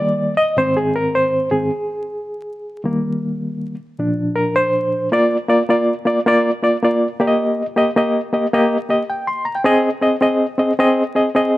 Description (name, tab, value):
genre	soul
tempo	106 BPM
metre	4/4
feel	swing 64% on 8ths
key	Bb mixolydian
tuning	A4 = 440 Hz
part	barky reed electric piano	solo	0.0-11.6 s	Ab2 to C6	-15 LUFS	equal	overdrive, tremolo
room	light reverb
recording	vinyl crackle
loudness	-15 LUFS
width	side -16 dB against mid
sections	0.0-5.1 A section; 5.1-11.6 B section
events	reed electric piano solo 0.0-5.1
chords	0.0 Eb; 0.6 Ab; 2.9 Eb; 4.0 Bb; 7.1 Eb; 9.7 Ab